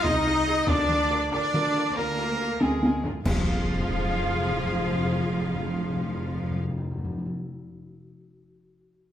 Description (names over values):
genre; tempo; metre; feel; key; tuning
cinematic, epic orchestral film score; 93 BPM (dotted quarters); 12/8; straight; F minor; A4 = 440 Hz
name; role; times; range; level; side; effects
rich symphonic violin section; melody; 0.0-6.6 s; Ab4 to F5; -39 LUFS; left 2 dB; none
concert flute; second line; 0.0-6.6 s; F5 to Eb6; -35 LUFS; left 1 dB; none
rich symphonic violin section; second line; 0.0-6.6 s; Ab4 to F5; -38 LUFS; left 3 dB; none
rich symphonic viola section; accompaniment; 0.0-6.6 s; F4 to Bb4; -35 LUFS; right 1 dB; none
dark French horn section; sustained chords; 0.0-6.6 s; Ab3 to F4; -35 LUFS; left 5 dB; none
warm trombone section; sustained chords; 0.0-6.6 s; F3 to Eb4; -36 LUFS; equal; none
bright trumpet; stabs; 0.0-6.6 s; F4 to Eb5; -32 LUFS; right 1 dB; none
clear symphonic double bass section; bass; 0.0-6.6 s; C2 to F2; -33 LUFS; right 3 dB; none
rich symphonic cello section; bass; 0.0-6.6 s; F3 to Eb4; -31 LUFS; equal; none
taiko ensemble; drums; 0.0-4.1 s; none; -27 LUFS; equal; none
timpani; percussion; 3.2-7.3 s; F2; -30 LUFS; left 2 dB; none
clash cymbals and concert bass drum; percussion; 3.3-4.1 s; none; -33 LUFS; equal; none
sub drop; sound effects; 3.4-7.3 s; none; -36 LUFS; equal; none
room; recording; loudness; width
wet recital hall reverb, RT60 1.4 s; none; -23 LUFS; side -10 dB against mid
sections
0.0-3.3 A section; 3.3-5.8 B section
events
drum fill 2.6-3.3; band accent 3.3-3.7; impact 3.3-5.8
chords
0.0 Fm/C; 0.7 Bb/D; 3.3 Fm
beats
0.04 | 0.69 1.33 1.97 2.61 | 3.26 3.90 4.54 5.18